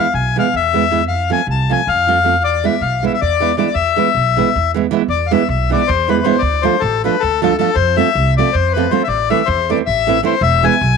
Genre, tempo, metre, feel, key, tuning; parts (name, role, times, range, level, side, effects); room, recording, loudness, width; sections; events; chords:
balkan folk, Balkan wedding band; 314 BPM (eighths); 7/8; straight; E phrygian dominant; A4 = 443 Hz
accordion; melody; 0.0-11.0 s; A4 to A5; -15 LUFS; left 10 dB
nylon-string guitar; accompaniment; 0.0-10.7 s; E3 to F4; -17 LUFS; right 14 dB
upright bass; bass; 0.1-11.0 s; E1 to F2; -19 LUFS; right 2 dB; tube saturation
moderate spring reverb, RT60 1.5 s; 1960s-style stereo with parts hard left and right; -13 LUFS; side -5 dB against mid
0.0-5.1 A section; 5.1-11.0 B section
0.0 E; 1.1 F; 2.4 E; 6.4 Dm; 7.8 F; 9.1 Am; 10.4 E